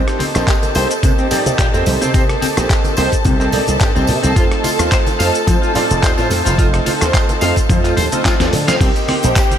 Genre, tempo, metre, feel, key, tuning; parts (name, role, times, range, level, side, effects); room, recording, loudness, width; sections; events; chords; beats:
nu-disco, nu disco; 108 BPM; 4/4; swing 54% on 16ths; C dorian; A4 = 440 Hz
clear grand piano; accompaniment; 0.0-9.6 s; A3 to D5; -19 LUFS; right 2 dB; ensemble chorus, diffuse ambient delay
warm chamber string section; sustained chords; 0.0-9.6 s; G4 to A5; -22 LUFS; equal; sidechain pumping
dusty soul sampler-style drum kit; drums; 0.1-9.6 s; crash cymbal, handclaps, hi-hat, rim click, shaker, snare drum; -22 LUFS; left 1 dB; small room ambience
electric guitar at the edge of break-up; riff; 0.2-9.4 s; C3 to F5; -22 LUFS; left 2 dB; lush chorus, diffuse ambient delay
congas, tambourine and bongos; percussion; 0.2-9.6 s; -26 LUFS; right 2 dB
slap bass with an envelope filter; bass; 0.4-9.3 s; F1 to D3; -18 LUFS; equal
electronic kick drum; drums; 0.5-9.5 s; -15 LUFS; equal; small room ambience
light reverb, digital ambience; -12 LUFS; side -9 dB against mid
0.0-8.8 A section
drum fill 8.3-8.8
0.0 Cm7; 4.4 F7; 8.8 Cm7
0.48 1.03 1.59 | 2.14 2.70 3.25 3.81 | 4.37 4.92 5.48 6.03 | 6.59 7.14 7.70 8.25 | 8.81 9.37